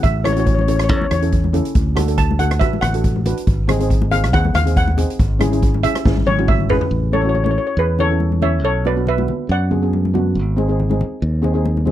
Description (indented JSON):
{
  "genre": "calypso",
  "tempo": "140 BPM",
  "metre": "4/4",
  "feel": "swing 54% on 16ths",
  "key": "A major",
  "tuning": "A4 = 440 Hz",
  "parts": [
    { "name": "steel pan", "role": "melody", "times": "0.0-10.1 s", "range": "G#4 to A5", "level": "-21 LUFS", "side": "equal", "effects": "none" },
    { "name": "steel pan", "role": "accompaniment", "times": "0.0-11.9 s", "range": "B3 to B4", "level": "-23 LUFS", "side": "right 1 dB", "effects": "none" },
    { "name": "modern bright fingered electric bass", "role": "bass", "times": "0.0-11.9 s", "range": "G#1 to F#2", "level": "-18 LUFS", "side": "equal", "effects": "none" },
    { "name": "street-band drum kit", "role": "drums", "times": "0.0-6.9 s", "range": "hi-hat, kick drum, rim click, snare drum, toms", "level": "-19 LUFS", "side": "equal", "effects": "none" },
    { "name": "congas", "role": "percussion", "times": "0.3-11.9 s", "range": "none", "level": "-26 LUFS", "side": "left 5 dB", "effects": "none" }
  ],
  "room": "little or no reverb",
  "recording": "dry, close 1970s-style studio recording",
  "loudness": "-15 LUFS",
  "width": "side -12 dB against mid",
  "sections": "0.0-6.9 A section; 6.9-11.9 B section",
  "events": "steel pan solo 0.0-6.9; drum fill 6.1-6.9",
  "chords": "0.0 A; 1.8 D; 3.5 G#7; 5.2 C#m/G#; 6.9 Amaj7; 8.6 Bm; 10.4 G#"
}